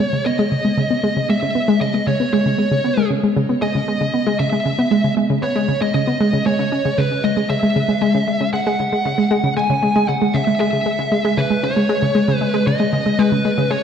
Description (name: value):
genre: ambient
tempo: 116 BPM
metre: 4/4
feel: straight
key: C# minor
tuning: A4 = 440 Hz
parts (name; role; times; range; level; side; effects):
- fuzz lead guitar; melody; 0.0-13.8 s; B4 to G#5; -21 LUFS; equal; distortion, tape echo
- analog pluck; riff; 0.0-13.8 s; C#3 to C#4; -17 LUFS; equal; chorus, tape echo
room: wet concert hall reverb, RT60 2.0 s, digital ambience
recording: dark, warm production, faint mains hum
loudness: -15 LUFS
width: side -8 dB against mid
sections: 0.0-13.8 A section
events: filter sweep on synth arpeggio sound 0.0-13.8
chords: 0.0 C#m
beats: 0.26 0.78 | 1.29 1.81 2.33 2.84 | 3.36 3.88 4.40 4.91 | 5.43 5.95 6.46 6.98 | 7.50 8.02 8.53 9.05 | 9.57 10.09 10.60 11.12 | 11.64 12.15 12.67 13.19 | 13.71